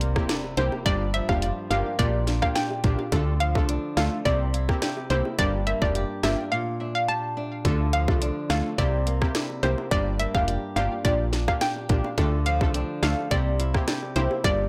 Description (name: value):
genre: dancehall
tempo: 106 BPM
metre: 4/4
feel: straight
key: unclear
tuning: A4 = 440 Hz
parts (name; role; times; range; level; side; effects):
- analog pluck; melody; 0.0-14.5 s; C5 to A5; -30 LUFS; equal; chorus, tape echo
- flamenco guitar; arpeggios; 0.0-14.7 s; G2 to G4; -34 LUFS; equal; none
- solid FM bass; bass; 0.0-14.7 s; F1 to D2; -28 LUFS; equal; none
- island pop drum kit; drums; 0.0-14.6 s; hi-hat, kick drum, rim click, snare drum; -29 LUFS; equal; none
- impact; sound effects; 0.3-0.9 s; none; -50 LUFS; equal; none
- synth brass stab; accompaniment; 0.2-14.7 s; A3 to A4; -35 LUFS; equal; chorus, sidechain pumping
- bongos; percussion; 0.4-14.6 s; none; -38 LUFS; equal; none
room: light reverb, digital ambience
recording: blown-out, overdriven recording, overdrive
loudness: -25 LUFS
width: mono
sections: 0.0-14.7 A section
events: impact 0.0-0.9; break 6.5-7.7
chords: 0.0 C7; 0.9 Gm7; 2.0 Bb6; 3.1 Dm; 4.3 C7; 5.4 Gm7; 6.5 Bb6; 7.7 Dm; 8.8 C7; 9.9 Gm7; 11.0 Bb6; 12.2 Dm; 13.3 C7